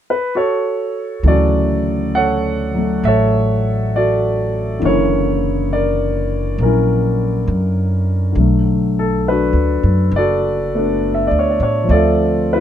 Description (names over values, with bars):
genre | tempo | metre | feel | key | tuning
jazz ballad | 68 BPM | 4/4 | swing 69% on 8ths | D major | A4 = 440 Hz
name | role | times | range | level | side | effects
warm grand piano | accompaniment | 0.1-12.6 s | C#3 to F#5 | -16 LUFS | left 1 dB | none
upright bass | bass | 1.2-12.6 s | F#1 to A2 | -18 LUFS | right 1 dB | none
room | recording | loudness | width
little or no reverb | close, detailed microphones | -14 LUFS | side -10 dB against mid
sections
0.0-1.2 A section; 1.2-12.6 B section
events
none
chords
0.0 F#madd11; 1.2 Dmaj7; 4.8 F#7b13; 8.4 Bm7; 11.9 Dm9